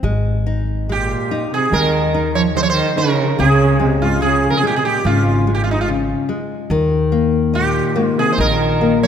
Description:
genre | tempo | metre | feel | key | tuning
fado-style ballad | 72 BPM | 4/4 | rubato | Ab major | A4 = 439 Hz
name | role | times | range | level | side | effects
nylon-string guitar | accompaniment | 0.0-9.1 s | Db3 to Eb4 | -20 LUFS | left 4 dB | none
upright bass | bass | 0.0-9.1 s | Ab1 to Eb2 | -20 LUFS | equal | none
sitar | melody | 0.9-9.1 s | Eb4 to Db5 | -18 LUFS | right 3 dB | slapback echo
warm cello | second line | 0.9-9.1 s | G2 to F3 | -20 LUFS | right 3 dB | none
room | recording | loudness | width
wet concert hall reverb, RT60 1.9 s | none | -14 LUFS | side -8 dB against mid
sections
0.0-9.1 A section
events
none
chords
0.0 Ab5; 3.4 Db5; 6.7 Eb5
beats
| 0.03 0.88 1.72 2.55 | 3.38 4.21 5.04 5.87 | 6.70 7.53 8.38

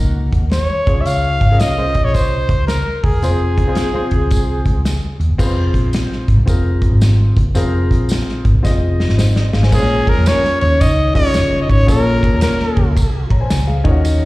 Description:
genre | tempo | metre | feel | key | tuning
uptempo 1960s-style soul | 111 BPM | 4/4 | swing 65% on 8ths | Bb minor | A4 = 440 Hz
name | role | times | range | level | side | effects
dark baby grand piano | accompaniment | 0.0-14.3 s | Bb2 to Bb5 | -22 LUFS | left 2 dB | plate reverb, slapback echo
vintage muted picked electric bass | bass | 0.0-14.3 s | F1 to F2 | -15 LUFS | equal | none
natural country drum kit | drums | 0.3-14.2 s | crash cymbal, hi-hat, kick drum, ride cymbal, snare drum | -18 LUFS | equal | none
clear trumpet | melody | 0.5-4.9, 9.7-12.9 s | Ab4 to F5 | -19 LUFS | equal | analog delay, plate reverb, slapback echo
tambourine | percussion | 0.5-14.2 s | none | -34 LUFS | right 2 dB | none
vibraphone with soft mallets | second line | 9.7-12.9 s | Ab3 to Eb4 | -23 LUFS | right 1 dB | plate reverb, slapback echo
room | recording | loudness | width
light reverb | live gig heard through the venue's PA, recital hall reverb | -12 LUFS | side -19 dB against mid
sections
0.0-5.4 A section; 5.4-9.7 B section; 9.7-14.3 C section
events
drum fill 8.6-9.7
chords
0.0 Ebm; 0.8 Db; 3.2 Fm; 9.7 Bbm7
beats
0.53 | 1.07 1.61 2.15 2.69 | 3.23 3.77 4.31 4.86 | 5.40 5.94 6.48 7.02 | 7.56 8.10 8.64 9.18 | 9.72 10.26 10.80 11.34 | 11.88 12.42 12.96 13.50 | 14.04

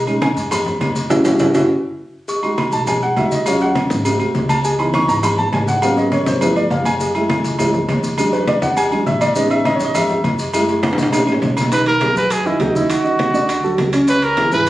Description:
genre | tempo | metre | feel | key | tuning
Afro-Cuban jazz | 204 BPM | 4/4 | straight | unclear | A4 = 444 Hz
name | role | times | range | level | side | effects
warm upright piano | accompaniment | 0.0-14.7 s | C#3 to C#6 | -17 LUFS | right 1 dB | none
upright bass | bass | 0.0-14.7 s | F#1 to B2 | -25 LUFS | equal | none
agogo bells and timbales | percussion | 0.1-14.7 s | none | -23 LUFS | equal | none
congas | percussion | 0.1-14.7 s | none | -22 LUFS | left 1 dB | none
maracas | percussion | 0.1-14.7 s | none | -31 LUFS | left 1 dB | none
cowbell and bongos | percussion | 0.2-14.7 s | none | -26 LUFS | left 3 dB | none
breathy trumpet | melody | 11.7-14.7 s | D#4 to B4 | -17 LUFS | right 1 dB | plate reverb
room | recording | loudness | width
moderate studio reverb, RT60 0.7 s | recorded on a phone in the room, club reverb, compression | -14 LUFS | side -15 dB against mid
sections
0.0-2.3 A section; 2.3-11.7 A section; 11.7-14.7 B section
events
upright piano solo 0.0-11.7; band accent 1.1-2.3; drum fill 1.5-2.3, 10.8-11.7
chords
0.0 B69; 1.1 F#5; 1.7 N.C.; 2.3 B13; 3.5 D#m9; 4.1 G#7b9; 4.6 C#m7; 5.8 G#m11; 6.4 G13; 7.0 F#m7; 8.2 E9; 9.4 Amaj9#11; 10.5 F#m9; 11.1 B9; 11.7 B6; 12.9 D#mmaj7; 13.5 D; 14.1 C#m7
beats
0.22 0.52 0.81 | 1.10 1.40 1.70 1.99 | 2.28 2.58 2.87 3.17 | 3.46 3.76 4.05 4.35 | 4.64 4.94 5.23 5.53 | 5.82 6.12 6.41 6.71 | 7.00 7.30 7.59 7.89 | 8.18 8.48 8.77 9.06 | 9.36 9.65 9.95 10.24 | 10.54 10.83 11.13 11.42 | 11.72 12.01 12.31 12.60 | 12.90 13.19 13.49 13.78 | 14.08 14.37 14.67

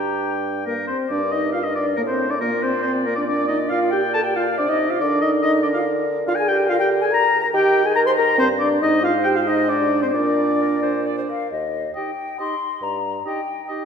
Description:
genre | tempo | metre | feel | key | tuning
quick classical-period movement for wind quintet | 139 BPM | 3/4 | rubato | Eb major from 6.3 s | A4 = 440 Hz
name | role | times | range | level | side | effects
hollow concert flute | melody | 0.0-13.7 s | Bb4 to C6 | -25 LUFS | left 7 dB | none
clear oboe | second line | 0.0-13.8 s | Bb4 to C6 | -24 LUFS | left 2 dB | none
clear clarinet | accompaniment | 0.0-13.8 s | G4 to D5 | -28 LUFS | right 6 dB | none
mellow French horn | accompaniment | 0.0-13.8 s | Bb3 to C5 | -22 LUFS | right 1 dB | none
mellow bassoon | bass | 0.0-13.2 s | Eb2 to Eb3 | -27 LUFS | right 1 dB | none
room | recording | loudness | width
wet concert hall reverb, RT60 1.9 s | none | -18 LUFS | side -6 dB against mid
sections
0.0-1.1 A section; 1.1-11.5 B section; 11.5-13.9 C section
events
none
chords
0.0 Gm; 2.4 Bbadd9; 3.7 Bb; 5.0 Bb/D; 7.5 Eb; 8.8 Fm13/Ab; 10.1 Bb; 11.5 Eb; 12.8 Eb/G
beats
0.21 0.66 | 1.11 1.55 1.99 | 2.43 2.86 3.29 | 3.71 4.15 4.58 | 5.01 5.43 5.85 | 6.27 6.69 7.12 | 7.54 7.96 8.39 | 8.82 9.25 9.70 | 10.14 10.60 11.06 | 11.51 11.95 12.39 | 12.82 13.25 13.68

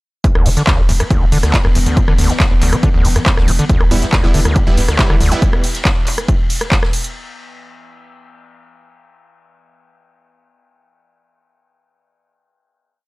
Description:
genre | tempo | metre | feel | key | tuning
driving peak-time techno | 139 BPM | 4/4 | straight | E minor | A4 = 441 Hz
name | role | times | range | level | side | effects
overdriven acid bass | riff | 0.2-5.4 s | D2 to E3 | -18 LUFS | equal | sidechain pumping
metallic inharmonic drone | drone | 1.0-5.5 s | E3 to B3 | -28 LUFS | left 1 dB | chorus, built-in reverb, sidechain pumping
electronic kick drum | drums | 0.2-6.8 s | none | -15 LUFS | equal | none
soft-mallet drum kit | drums | 0.2-7.0 s | ride cymbal, snare drum | -32 LUFS | left 3 dB | high-pass filter on cymbals, high-pass filter on snare, high-pass filter on room
techno drum kit | drums | 0.2-7.1 s | handclaps, hi-hat, ride cymbal, rim click | -20 LUFS | equal | sidechain pumping on hats, sidechain pumping on cymbals
saturated sub bass | bass | 0.4-5.3 s | E1 | -16 LUFS | equal | overdrive, sidechain pumping, low-pass filter
supersaw stab | stabs | 3.9-5.6 s | G3 to E4 | -21 LUFS | right 2 dB | sidechain pumping, analog delay
room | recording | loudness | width
digital ambience | dry, gritty hardware recording, transformer saturation | -12 LUFS | side -23 dB against mid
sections
0.2-7.1 drop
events
drop 0.2-7.1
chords
0.2 Em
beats
| 0.24 0.67 1.10 1.54 | 1.97 2.40 2.83 3.26 | 3.69 4.13 4.56 4.99 | 5.42 5.85 6.29 6.72

